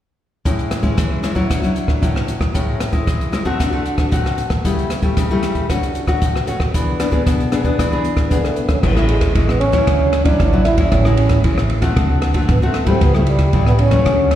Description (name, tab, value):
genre	samba and choro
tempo	115 BPM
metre	4/4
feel	straight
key	A major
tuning	A4 = 440 Hz
part	nylon-string guitar	accompaniment	0.5-14.4 s	A2 to G#4	-20 LUFS	left 2 dB	slapback echo
part	open jazz drum kit	drums	0.5-14.4 s	crash cymbal, hi-hat, kick drum, ride cymbal, rim click	-19 LUFS	equal	none
part	breathy trombone	melody	8.3-14.4 s	G3 to E4	-19 LUFS	right 2 dB	slapback echo
part	upright bass	bass	8.8-14.4 s	A1 to G#2	-16 LUFS	equal	none
room	light reverb, studio ambience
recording	live gig heard through the venue's PA, recital hall reverb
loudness	-14 LUFS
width	side -11 dB against mid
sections	0.5-8.8 A section; 8.8-14.4 B section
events	none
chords	0.5 Amaj7; 1.5 Dmaj9; 2.5 Amaj7; 3.6 D7; 4.6 A7/C#; 5.7 Dmaj7; 6.7 E7; 8.8 Amaj7; 9.9 Dmaj9; 10.9 Amaj7; 12.0 D7; 13.0 A7/C#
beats	| 0.45 0.98 1.50 2.02 | 2.55 3.07 3.60 4.12 | 4.64 5.17 5.69 6.21 | 6.74 7.26 7.78 8.31 | 8.83 9.35 9.88 10.40 | 10.92 11.44 11.97 12.49 | 13.01 13.53 14.05